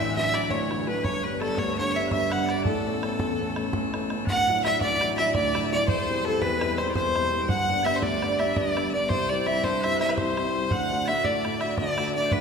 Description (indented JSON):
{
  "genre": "celtic folk, Celtic slip jig",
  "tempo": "112 BPM (dotted quarters)",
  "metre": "9/8",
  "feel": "straight",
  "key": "A mixolydian, D mixolydian from 4.3 s",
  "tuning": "A4 = 436 Hz",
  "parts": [
    { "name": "clear fiddle", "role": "melody", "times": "0.0-12.4 s", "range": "A4 to F#5", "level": "-26 LUFS", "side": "equal", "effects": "none" },
    { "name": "concert harp", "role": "second line", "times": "0.0-12.4 s", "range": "A4 to G5", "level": "-32 LUFS", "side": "right 2 dB", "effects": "none" },
    { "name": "loud bright bagpipes", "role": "second line", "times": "0.0-12.4 s", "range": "A4 to A5", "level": "-35 LUFS", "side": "left 5 dB", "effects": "none" },
    { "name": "warm concert grand piano", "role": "accompaniment", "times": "0.0-12.4 s", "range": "D1 to F#4", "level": "-28 LUFS", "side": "left 1 dB", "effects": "none" },
    { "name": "bodhran", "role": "percussion", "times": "0.2-12.4 s", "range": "none", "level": "-32 LUFS", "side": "right 1 dB", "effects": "none" }
  ],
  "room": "wet scoring stage reverb, RT60 2.0 s",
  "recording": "recorded in a church or concert hall",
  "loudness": "-23 LUFS",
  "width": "side -6 dB against mid",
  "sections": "0.0-4.3 A section; 4.3-12.4 B section",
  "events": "none",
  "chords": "0.0 Dadd9; 1.0 G; 2.7 Aadd9; 4.3 Dadd9; 5.9 C/E; 7.5 G; 9.1 C; 10.7 D"
}